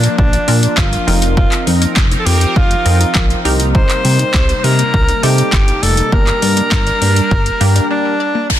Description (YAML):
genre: dance-pop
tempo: 101 BPM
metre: 4/4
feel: straight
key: unclear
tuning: A4 = 440 Hz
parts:
  - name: clear alto saxophone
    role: melody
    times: 0.0-8.6 s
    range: D4 to C5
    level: -18 LUFS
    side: equal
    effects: dub echo
  - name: sweeping resonant pad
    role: sustained chords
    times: 0.0-8.5 s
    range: C3 to Bb4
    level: -22 LUFS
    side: left 1 dB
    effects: chorus, sidechain pumping
  - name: wide unison pluck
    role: arpeggios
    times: 0.0-8.5 s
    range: F3 to D5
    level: -27 LUFS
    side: left 2 dB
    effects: none
  - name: chorused synth bass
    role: bass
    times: 0.0-7.8 s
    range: F1 to C3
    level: -14 LUFS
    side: equal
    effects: sidechain pumping
  - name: deep house drum kit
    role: drums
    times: 0.0-8.6 s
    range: handclaps, hi-hat, kick drum, snare drum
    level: -15 LUFS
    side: equal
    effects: none
  - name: funky polysynth comp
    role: accompaniment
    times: 0.5-8.6 s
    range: Bb3 to Bb4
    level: -22 LUFS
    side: right 1 dB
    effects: chorus, sidechain pumping
  - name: downlifter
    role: sound effects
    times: 8.5-8.6 s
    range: none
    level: -14 LUFS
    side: left 2 dB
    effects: none
room: digital ambience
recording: dense, heavily limited modern master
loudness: -11 LUFS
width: side -12 dB against mid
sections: 0.0-8.5 A section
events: break 7.9-8.5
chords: 0.0 Bb; 1.1 F7sus4; 3.5 Cm7; 6.1 Gm